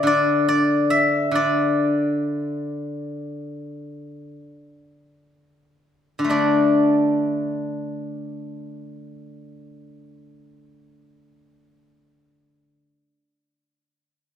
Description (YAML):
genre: chinese traditional, Chinese solo plucked strings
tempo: free time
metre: none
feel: none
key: unclear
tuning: A4 = 439 Hz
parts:
  - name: steel-string zither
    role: solo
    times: 0.0-12.8 s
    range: D3 to E5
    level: -20 LUFS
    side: left 1 dB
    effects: none
room: wet scoring stage reverb, RT60 1.8 s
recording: recorded in a church or concert hall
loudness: -18 LUFS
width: side -9 dB against mid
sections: 0.0-6.3 A section; 6.3-11.2 B section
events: slowing down 0.0-6.3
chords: none